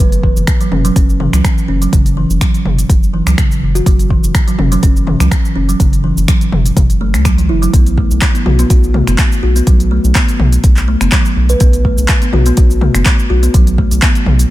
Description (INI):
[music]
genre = afro house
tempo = 124 BPM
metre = 4/4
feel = swing 54% on 16ths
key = F# minor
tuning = A4 = 437 Hz
[part]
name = kalimba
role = arpeggios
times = 0.0-14.1 s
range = C#3 to B4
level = -16 LUFS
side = right 1 dB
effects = sidechain pumping, digital delay
[part]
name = round analog bass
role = bass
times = 0.0-14.5 s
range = F#1 to C#2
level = -13 LUFS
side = equal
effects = sidechain pumping
[part]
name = deep house drum kit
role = drums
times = 0.0-14.5 s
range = finger snaps, handclaps, hi-hat, shaker, toms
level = -18 LUFS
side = left 1 dB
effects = none
[part]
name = electronic kick drum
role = drums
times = 0.2-14.1 s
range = none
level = -11 LUFS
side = equal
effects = none
[sound]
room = little or no reverb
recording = none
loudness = -9 LUFS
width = side -15 dB against mid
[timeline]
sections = 0.0-14.5 A section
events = none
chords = 0.0 F#5; 7.7 B5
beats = 0.48 0.96 1.44 | 1.93 2.41 2.90 3.38 | 3.86 4.35 4.83 5.31 | 5.80 6.28 6.77 7.25 | 7.73 8.22 8.70 9.19 | 9.67 10.15 10.64 11.12 | 11.61 12.09 12.57 13.06 | 13.54 14.02